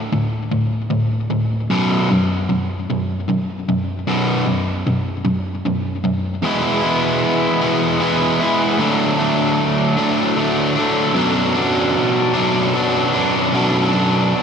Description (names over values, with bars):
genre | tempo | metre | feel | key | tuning
rock | 51 BPM (dotted quarters) | 6/8 | straight | B dorian | A4 = 440 Hz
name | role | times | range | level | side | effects
crunchy overdriven guitar | solo | 0.0-14.4 s | B1 to E4 | -16 LUFS | equal | ping-pong delay
room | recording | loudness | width
wet lush hall reverb, RT60 2.5 s | dreamy mix soaked in reverb | -16 LUFS | side -6 dB against mid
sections
0.0-6.4 A section; 6.4-14.4 B section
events
build-up 0.0-6.4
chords
0.0 D5; 1.7 B5; 6.4 E; 8.8 D; 11.2 Bm